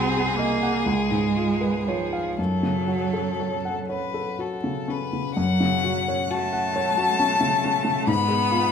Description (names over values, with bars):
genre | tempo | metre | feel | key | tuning
classical, slow romantic movement for piano trio | 38-46 BPM (dotted quarters) | 6/8 | rubato | F# minor | A4 = 439 Hz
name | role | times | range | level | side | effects
rich violin | melody | 0.0-8.7 s | G#4 to B5 | -25 LUFS | left 6 dB | none
clear cello | second line | 0.0-8.7 s | E#3 to B#3 | -27 LUFS | right 6 dB | none
clear grand piano | accompaniment | 0.0-8.7 s | B#1 to F#5 | -25 LUFS | left 1 dB | none
room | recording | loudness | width
moderate recital hall reverb, RT60 1.3 s | none | -21 LUFS | side -7 dB against mid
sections
0.0-5.4 A section; 5.4-8.7 A section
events
none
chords
0.0 G#7/B#; 0.9 C#7; 2.4 F#m; 8.1 C#7/G# (rootless)